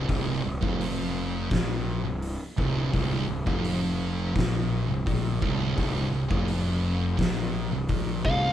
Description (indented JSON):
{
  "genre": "stoner and doom metal",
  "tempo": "84 BPM",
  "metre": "4/4",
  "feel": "straight",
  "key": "unclear",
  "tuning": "A4 = 445 Hz",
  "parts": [
    { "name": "thick fuzz guitar", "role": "riff", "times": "0.0-8.5 s", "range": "C2 to Bb2", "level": "-30 LUFS", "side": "left 5 dB", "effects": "distortion" },
    { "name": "thick fuzz guitar", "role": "riff", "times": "0.0-8.5 s", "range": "C2 to Bb2", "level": "-31 LUFS", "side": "right 6 dB", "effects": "distortion" },
    { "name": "fuzz fingered electric bass", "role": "bass", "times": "0.0-8.5 s", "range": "C1 to Bb1", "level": "-31 LUFS", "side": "equal", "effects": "overdrive" },
    { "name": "oversized low-tuned drum kit", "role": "drums", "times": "0.1-8.4 s", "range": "hi-hat, kick drum, snare drum", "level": "-29 LUFS", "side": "equal", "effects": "none" },
    { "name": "fuzz lead guitar", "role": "melody", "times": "8.3-8.5 s", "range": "F5", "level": "-25 LUFS", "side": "left 1 dB", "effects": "distortion" }
  ],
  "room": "light reverb",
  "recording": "band playing live in one room",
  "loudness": "-24 LUFS",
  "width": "side -11 dB against mid",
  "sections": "0.0-8.5 A section",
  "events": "none",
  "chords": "0.0 C7sus4",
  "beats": "| 0.09 0.80 1.51 2.22 | 2.94 3.65 4.36 5.07 | 5.77 6.48 7.19 7.90"
}